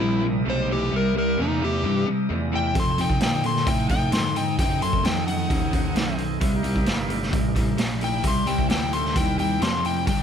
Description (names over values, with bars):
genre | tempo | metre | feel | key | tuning
blues rock power trio and southern rock | 131 BPM | 4/4 | straight | unclear | A4 = 443 Hz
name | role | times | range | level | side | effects
overdriven slide guitar | melody | 0.0-10.2 s | D#4 to C6 | -26 LUFS | left 4 dB | slapback echo
bluesy overdriven lead guitar | second line | 0.0-10.2 s | Bb2 to A4 | -34 LUFS | right 6 dB | distortion
overdriven tonewheel organ | sustained chords | 0.0-10.2 s | A3 to D#5 | -35 LUFS | right 4 dB | slow rotary speaker
distorted electric guitar | riff | 0.0-10.2 s | F2 to A3 | -26 LUFS | equal | distortion
fuzz picked electric bass | bass | 0.0-10.2 s | G1 to Bb2 | -28 LUFS | equal | overdrive
raw garage drum kit | drums | 2.8-10.2 s | hi-hat, kick drum, snare drum | -25 LUFS | equal | none
room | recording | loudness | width
light reverb | none | -20 LUFS | side -8 dB against mid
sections
0.0-10.2 A section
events
none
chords
0.0 C7#9; 2.8 F7#9; 4.6 F#dim7; 6.4 C7#9